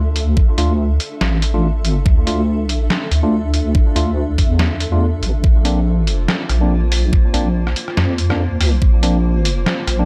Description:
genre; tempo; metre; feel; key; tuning
deep dubstep; 142 BPM; 4/4; swing 56% on 16ths, half-time; D minor; A4 = 440 Hz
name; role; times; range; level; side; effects
granular cloud pad; sustained chords; 0.0-10.1 s; Bb3 to E5; -29 LUFS; equal; built-in reverb
deep soft wobble bass; bass; 0.0-10.1 s; A1 to F2; -18 LUFS; equal; chorus
trip hop sampler-style drum kit; drums; 0.2-10.0 s; hi-hat, rim click, snare drum; -24 LUFS; equal; none
electronic kick drum; drums; 0.4-8.9 s; none; -15 LUFS; equal; overdrive
bright tine electric piano; stabs; 0.6-10.1 s; A3 to F4; -27 LUFS; equal; dub echo
room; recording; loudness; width
digital ambience; none; -16 LUFS; mono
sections
0.0-10.1 A section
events
none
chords
0.0 Dm; 5.4 Bbadd9

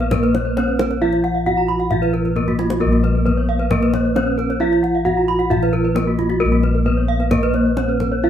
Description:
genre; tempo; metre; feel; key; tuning
Balinese gamelan; 133 BPM; 4/4; straight; Bb pelog; A4 = 440 Hz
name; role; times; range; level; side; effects
gamelan-type bronze metallophone; melody; 0.0-8.3 s; Bb3 to Gb4-40c; -21 LUFS; equal; none
gamelan-type bronze metallophone; accompaniment; 0.0-8.3 s; F3-45c to Bb3; -24 LUFS; equal; none
gamelan-type bronze metallophone; arpeggios; 0.0-8.3 s; Gb4-40c to Gb5-40c; -23 LUFS; left 4 dB; none
gamelan-type bossed gongs; bass; 0.0-8.3 s; Bb1 to Bb4; -20 LUFS; left 1 dB; none
kendang; percussion; 0.0-8.1 s; none; -26 LUFS; equal; none
gamelan-type bronze metallophone; arpeggios; 0.2-8.1 s; F4-45c to Cb6; -25 LUFS; right 6 dB; none
room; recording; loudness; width
moderate studio reverb, RT60 0.5 s; band playing live in one room; -15 LUFS; side -10 dB against mid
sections
0.0-8.3 A section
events
drum fill 2.2-2.8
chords
none

